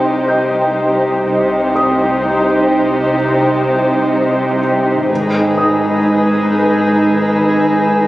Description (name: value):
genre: cinematic, suspense film score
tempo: free time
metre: none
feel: none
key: C harmonic minor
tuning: A4 = 440 Hz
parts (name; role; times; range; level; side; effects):
- muted studio violin section; melody; 0.0-8.1 s; Cb5 to C5; -24 LUFS; left 1 dB; none
- muted studio violin section; second line; 0.0-8.1 s; G4 to Ab4; -22 LUFS; left 1 dB; none
- muted studio viola section; accompaniment; 0.0-8.1 s; Eb4; -18 LUFS; right 1 dB; none
- warbly tape-like pad; sustained chords; 0.0-8.1 s; Eb4 to Ab5; -17 LUFS; equal; chorus, built-in reverb
- muted chamber cello section; bass; 0.0-8.1 s; Ab2 to C3; -17 LUFS; equal; none
- muted studio double bass section; bass; 0.0-8.1 s; Ab1 to C2; -24 LUFS; right 1 dB; none
- deep rumbling drone; drone; 0.0-8.1 s; Ab1 to C2; -35 LUFS; left 1 dB; none
- dark grand piano; texture; 0.0-8.1 s; Eb4 to B6; -23 LUFS; equal; none
- muted studio violin section; texture; 5.1-8.1 s; Eb6 to Bb6; -27 LUFS; equal; none
room: moderate scoring stage reverb, RT60 1.9 s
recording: recorded on a phone in the room, club reverb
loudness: -12 LUFS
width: side -16 dB against mid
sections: 0.0-8.1 A section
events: none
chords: 0.0 Cm; 5.1 Abm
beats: free time